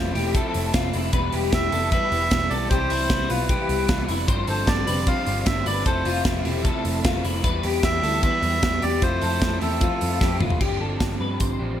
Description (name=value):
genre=jangly indie pop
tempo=152 BPM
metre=4/4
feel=straight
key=G mixolydian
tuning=A4 = 442 Hz
part: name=crunchy overdriven guitar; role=accompaniment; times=0.0-11.8 s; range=E2 to G4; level=-29 LUFS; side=right 3 dB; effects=wide subtle chorus
part: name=warm studio string section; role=sustained chords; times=0.0-10.6 s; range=C3 to E5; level=-34 LUFS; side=left 1 dB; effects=none
part: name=electric guitar through a small old amp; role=arpeggios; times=0.0-11.8 s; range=E4 to C5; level=-28 LUFS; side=left 6 dB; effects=ensemble chorus
part: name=vintage muted picked electric bass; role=bass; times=0.0-11.8 s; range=E1 to G2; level=-27 LUFS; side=equal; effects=none
part: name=modern studio drum kit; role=drums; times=0.2-11.5 s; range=crash cymbal, hi-hat, kick drum, ride cymbal, snare drum, toms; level=-24 LUFS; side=equal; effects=gated reverb
part: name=melodica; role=melody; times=1.5-10.4 s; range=A4 to F5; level=-26 LUFS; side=right 1 dB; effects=none
room=light reverb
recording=bright 1980s-style digital production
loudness=-20 LUFS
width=side -10 dB against mid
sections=0.0-10.6 A section; 10.6-11.8 B section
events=drum fill 10.2-10.6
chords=0.0 Fmaj7; 1.1 Em; 2.7 Cmaj7; 4.3 G7sus4; 5.9 Fmaj7; 7.4 Em; 9.0 Fmaj7; 10.6 G7sus4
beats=0.35 0.74 | 1.14 1.53 1.92 2.32 | 2.71 3.10 3.50 3.89 | 4.28 4.68 5.07 5.46 | 5.86 6.25 6.65 7.04 | 7.44 7.83 8.23 8.62 | 9.02 9.42 9.81 10.21 | 10.61 11.01 11.41